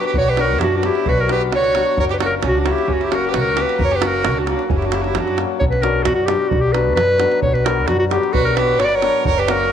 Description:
balkan folk, Balkan wedding band; 132 BPM; 2/4; straight; A4 = 442 Hz
clear clarinet; melody; 0.0-9.7 s; F#4 to D5; -18 LUFS; equal
clear violin; second line; 0.0-5.4, 8.3-9.7 s; C#4 to B4; -24 LUFS; right 8 dB
hammered dulcimer; accompaniment; 0.0-9.7 s; F#3 to F#4; -23 LUFS; left 11 dB
davul; percussion; 0.0-9.6 s; -24 LUFS; right 4 dB
upright bass; bass; 0.2-9.7 s; F#1 to F#2; -22 LUFS; equal
moderate plate reverb, RT60 2.8 s; 1960s-style stereo with parts hard left and right; -15 LUFS; side -9 dB against mid
0.0-5.6 A section; 5.6-9.7 A section
0.0 Bm; 2.0 F#; 5.6 Bm
| 0.15 0.60 | 1.06 1.52 | 1.97 2.43 | 2.88 3.33 | 3.79 4.24 | 4.70 5.15 | 5.61 6.06 | 6.52 6.97 | 7.43 7.89 | 8.34 8.80 | 9.26 9.72

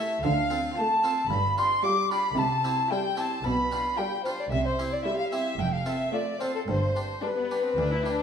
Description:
classical, baroque-style concerto movement with solo episodes; 112 BPM; 4/4; straight; A4 = 439 Hz
mellow hollow silver concert flute; melody; 0.0-8.2 s; A4 to D6; -27 LUFS; equal
warm chamber violin section; melody; 0.0-8.2 s; B3 to F4; -34 LUFS; left 5 dB
rich chamber violin section; second line; 0.0-8.2 s; A4 to D6; -34 LUFS; left 4 dB
dark chamber viola section; accompaniment; 0.0-7.6 s; G3 to A3; -34 LUFS; right 1 dB
harpsichord; accompaniment; 0.0-8.2 s; D2 to A4; -35 LUFS; equal
warm chamber cello section; bass; 0.2-8.2 s; D2 to D3; -32 LUFS; right 3 dB
warm studio double bass section; bass; 0.2-8.2 s; F1 to D2; -32 LUFS; right 2 dB
wet recital hall reverb, RT60 1.3 s; minimal, uncompressed stereo recording; -24 LUFS; side -7 dB against mid
0.0-8.2 A section
0.2 Dm7; 1.3 G5; 2.4 C; 3.4 G7/B; 4.5 C; 5.6 F; 6.7 G
| 0.24 0.77 1.30 1.84 | 2.37 2.90 3.44 3.98 | 4.52 5.05 5.59 6.13 | 6.68 7.23 7.78

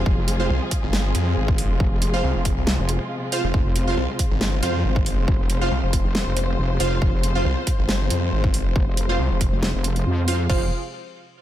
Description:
heavy wobble dubstep; 138 BPM; 4/4; swing 54% on 16ths, half-time; F minor; A4 = 440 Hz
dark studio string section; sustained chords; 0.0-10.7 s; C3 to C5; -29 LUFS; left 2 dB; sidechain pumping, low-pass filter
wobble bass; bass; 0.0-10.7 s; F1 to F2; -22 LUFS; equal; chorus, overdrive
electronic kick drum; drums; 0.1-10.6 s; -22 LUFS; equal; small room ambience
dubstep drum kit; drums; 0.3-10.6 s; crash cymbal, hi-hat, snare drum; -26 LUFS; right 1 dB; small room ambience
orchestra-hit-like synth stab; stabs; 0.4-10.7 s; F4 to F5; -28 LUFS; right 3 dB; built-in reverb, ping-pong delay
snarling distorted saw bass; bass; 0.5-9.5 s; F1 to F2; -22 LUFS; equal; distortion, overdrive
little or no reverb; -19 LUFS; side -12 dB against mid
0.0-10.5 A section
drop 0.0-10.5
0.0 Fm
| 0.06 0.50 0.93 1.36 | 1.80 2.23 2.67 3.10 | 3.54 3.97 4.41 4.84 | 5.28 5.71 6.15 6.58 | 7.02 7.45 7.89 8.32 | 8.76 9.19 9.63 10.06 | 10.50

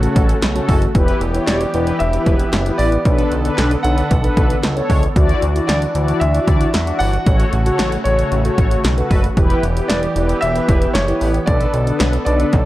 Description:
synth-pop; 114 BPM; 4/4; straight; E dorian; A4 = 440 Hz
warm grand piano; melody; 0.0-12.7 s; C#5 to F#5; -23 LUFS; right 1 dB
mellow synth brass; accompaniment; 0.0-12.5 s; C#4 to D5; -21 LUFS; left 2 dB; chorus
brassy analog pad; sustained chords; 0.0-12.7 s; C#3 to A4; -24 LUFS; equal; chorus
chorused synth bass; bass; 0.0-12.7 s; E1 to E2; -18 LUFS; equal
punchy analog drum machine; drums; 0.0-12.7 s; handclaps, hi-hat, kick drum, snare drum; -17 LUFS; equal
light reverb, digital ambience; dark, warm production; -14 LUFS; side -16 dB against mid
0.0-12.7 A section
0.0 A6; 0.9 Em; 3.1 Bm7; 5.2 Dadd9; 7.3 A6; 9.4 Em; 11.5 Bm7
0.42 | 0.95 1.48 2.00 2.53 | 3.06 3.58 4.11 4.63 | 5.16 5.69 6.21 6.74 | 7.26 7.79 8.32 8.84 | 9.37 9.90 10.42 10.95 | 11.48 12.00 12.53

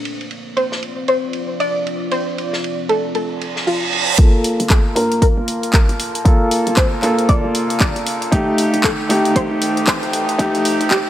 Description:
deep house; 116 BPM; 4/4; swing 60% on 16ths; G minor; A4 = 436 Hz
deep dark ambient pad; sustained chords; 0.0-11.1 s; C4 to Eb6; -27 LUFS; equal; chorus, built-in reverb, sidechain pumping
warm soul drum kit; drums; 0.1-4.1 s; hi-hat, ride cymbal, snare drum; -29 LUFS; right 1 dB; sidechain pumping on cymbals, high-pass filter on cymbals, low-pass filter on cymbals, studio reverb, sidechain pumping on hats, high-pass filter on hats, low-pass filter on hats, high-pass filter on snare, low-pass filter on snare, high-pass filter on room, low-pass filter on room
soft round pluck; melody; 0.6-11.1 s; F4 to D5; -22 LUFS; equal; ensemble chorus, analog delay
reverse cymbal and riser; sound effects; 3.5-11.1 s; -25 LUFS; right 4 dB
felt-muted upright piano; stabs; 4.2-11.1 s; A3 to Bb4; -18 LUFS; equal; sidechain pumping, low-pass filter, analog delay
hollow knocking FM bass; bass; 4.2-11.1 s; F1 to G2; -29 LUFS; equal
electronic kick drum; drums; 4.2-11.0 s; -14 LUFS; equal; studio reverb
house drum kit; drums; 4.2-11.0 s; handclaps, hi-hat; -21 LUFS; equal; studio reverb
light reverb; high-pass filter; -14 LUFS; side -12 dB against mid
0.0-4.2 A section; 4.2-11.1 B section
filter sweep on ambient pad 0.0-4.2; reverse cymbal 3.5-4.2; build-up 4.2-11.1; riser 4.2-11.1; filter sweep on felt piano 4.2-11.1; filter sweep on synth pluck 4.2-11.1; filter sweep 4.2-11.1
0.0 Dm7; 4.2 Gm9; 8.3 F7
| 0.05 0.56 1.08 1.60 | 2.12 2.63 3.15 3.67 | 4.19 4.70 5.22 5.74 | 6.25 6.77 7.29 7.81 | 8.32 8.84 9.36 9.88 | 10.39 10.91

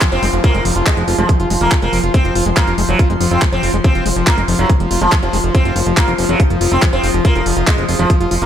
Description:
psychedelic trance; 141 BPM; 4/4; straight; A4 = 439 Hz
overtone-sweeping drone; sustained chords; 0.2-8.5 s; F3; -24 LUFS; equal; chorus, built-in reverb, sidechain pumping
overdriven acid bass; riff; 0.0-8.5 s; F3 to F4; -22 LUFS; equal; distortion, auto-pan, sidechain pumping, tape echo
electronic kick drum; drums; 0.0-8.2 s; -15 LUFS; equal
garage drum kit; drums; 0.0-8.5 s; handclaps, hi-hat; -21 LUFS; right 1 dB
downlifter; sound effects; 0.0-2.1 s; -28 LUFS; equal
airy breathy pad; texture; 0.0-8.5 s; F4 to Eb6; -24 LUFS; left 4 dB; chorus, sidechain pumping
sitar; melody; 0.1-8.5 s; F3 to C4; -20 LUFS; right 1 dB; phaser, sidechain pumping, digital delay
fat analog bass; bass; 0.1-8.5 s; F1; -18 LUFS; equal
digital ambience; -12 LUFS; side -10 dB against mid
0.0-8.5 A section
0.0 F5
0.01 | 0.44 0.86 1.29 1.72 | 2.14 2.57 2.99 3.42 | 3.84 4.27 4.70 5.12 | 5.55 5.97 6.40 6.82 | 7.25 7.67 8.10

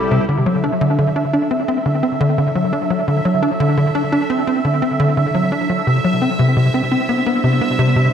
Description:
ambient, sequencer-driven space music; 86 BPM; 4/4; straight; A4 = 439 Hz
evolving wavetable pad; sustained chords; 0.0-8.1 s; F#3 to C5; -26 LUFS; left 1 dB; chorus, built-in reverb
tight sequencer bass; riff; 0.0-8.1 s; C3 to E4; -15 LUFS; equal; analog chorus, analog delay
bubbling stepped-filter texture; texture; 0.3-8.1 s; E5; -22 LUFS; right 4 dB; chorus, built-in reverb
moderate plate reverb, RT60 3.4 s; dreamy mix soaked in reverb; -14 LUFS; side -8 dB against mid
0.3-8.1 A section
fade-in on ambient pad 0.3-8.1
0.3 Dadd9; 5.9 Cadd9
| 0.29 0.98 1.68 2.38 | 3.08 3.78 4.47 5.17 | 5.87 6.57 7.26 7.96

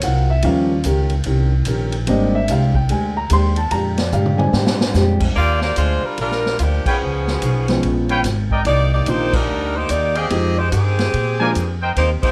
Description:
jazz, big band swing; 146 BPM; 4/4; swing 64% on 8ths; Eb major; A4 = 439 Hz
picked old ladder-braced acoustic guitar; accompaniment; 0.0-5.2, 12.0-12.3 s; Bb2 to C5; -26 LUFS; equal
warm concert grand piano; accompaniment; 0.0-11.5 s; Eb3 to C6; -23 LUFS; equal
upright bass; bass; 0.0-12.3 s; Ab1 to Bb2; -21 LUFS; equal
swinging big-band drum kit; drums; 0.0-12.3 s; crash cymbal, hi-hat, kick drum, ride cymbal, snare drum, toms; -27 LUFS; equal
bright saxophone section; melody; 5.4-12.3 s; Eb3 to Eb5; -23 LUFS; equal
warm trumpet section; stabs; 6.9-11.9 s; Ab4 to Ab5; -24 LUFS; equal
moderate club reverb, RT60 0.6 s; -18 LUFS; mono
0.0-5.4 A section; 5.4-12.3 B section
grand piano solo 0.0-5.4; drum fill 4.1-5.0; band accent 6.8, 9.3
0.4 Eb7; 2.1 Abmaj9#11; 3.7 Bb13; 5.4 Ebmaj9; 7.0 Db7#11; 8.7 Cm11; 10.3 Fm9; 11.1 Bb7
0.02 | 0.43 0.84 1.26 1.67 | 2.08 2.49 2.90 3.31 | 3.72 4.13 4.54 4.95 | 5.37 5.78 6.19 6.60 | 7.01 7.43 7.84 8.25 | 8.66 9.08 9.49 9.90 | 10.32 10.73 11.14 11.56 | 11.97

